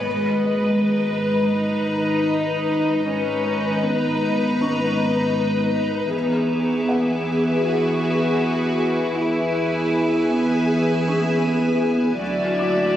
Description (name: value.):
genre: cinematic, suspense film score.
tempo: 79 BPM.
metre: 4/4.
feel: straight.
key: unclear.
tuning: A4 = 440 Hz.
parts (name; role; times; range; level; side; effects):
evolving wavetable pad; sustained chords; 0.0-13.0 s; D#4 to A#5; -28 LUFS; left 1 dB; chorus, built-in reverb.
felt-muted upright piano; texture; 0.0-13.0 s; C#4 to D6; -34 LUFS; left 1 dB; none.
warm chamber violin section; melody; 0.1-13.0 s; D#5 to E5; -30 LUFS; left 1 dB; none.
dark symphonic violin section; second line; 0.1-13.0 s; B4 to D5; -27 LUFS; left 5 dB; none.
dark symphonic viola section; accompaniment; 0.1-13.0 s; F#4 to B4; -27 LUFS; left 1 dB; none.
rich symphonic double bass section; bass; 0.1-13.0 s; G#1 to E2; -25 LUFS; right 1 dB; none.
warm symphonic cello section; bass; 0.1-13.0 s; F#3 to F#4; -23 LUFS; right 1 dB; none.
dark chamber violin section; texture; 6.1-13.0 s; A5 to D6; -38 LUFS; left 2 dB; none.
room: moderate scoring stage reverb, RT60 2.0 s.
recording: recorded on a phone in the room, studio reverb.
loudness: -18 LUFS.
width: side -11 dB against mid.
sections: 0.0-13.0 A section.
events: none.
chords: 0.1 G#madd9; 6.1 E; 12.2 Dadd9.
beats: | 0.05 0.81 1.57 2.33 | 3.09 3.85 4.61 5.37 | 6.13 6.89 7.65 8.41 | 9.17 9.93 10.69 11.45 | 12.21 12.96.